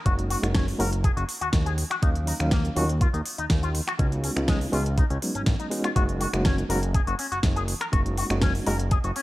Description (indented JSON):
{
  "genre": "nu-disco, nu disco",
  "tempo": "122 BPM",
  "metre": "4/4",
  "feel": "straight",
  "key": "F# major",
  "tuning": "A4 = 436 Hz",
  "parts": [
    { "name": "bright reed electric piano", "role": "accompaniment", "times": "0.1-8.7 s", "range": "F#3 to E#5", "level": "-30 LUFS", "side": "equal", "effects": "fast tremolo, sidechain pumping, low-pass filter, slapback echo" },
    { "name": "electric guitar with an envelope filter", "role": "riff", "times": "0.1-9.2 s", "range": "G#3 to A#4", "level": "-31 LUFS", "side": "left 3 dB", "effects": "wide subtle chorus, low-pass filter" },
    { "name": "fat analog bass", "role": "bass", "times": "0.1-9.1 s", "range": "F#1 to D#2", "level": "-27 LUFS", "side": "equal", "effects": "none" },
    { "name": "electronic kick drum", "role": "drums", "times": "0.1-9.0 s", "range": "none", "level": "-23 LUFS", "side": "equal", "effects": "none" },
    { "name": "pop drum kit", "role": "drums", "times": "0.1-9.2 s", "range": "finger snaps, hi-hat, snare drum", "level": "-30 LUFS", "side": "equal", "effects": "none" }
  ],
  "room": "light reverb, digital ambience",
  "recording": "dark, warm production",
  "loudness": "-22 LUFS",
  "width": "side -17 dB against mid",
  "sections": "0.0-9.2 A section",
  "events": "filter sweep on reed electric piano 0.0-9.2",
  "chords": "0.0 F#69; 1.8 D#m9; 4.0 C#7sus4; 6.0 F#69"
}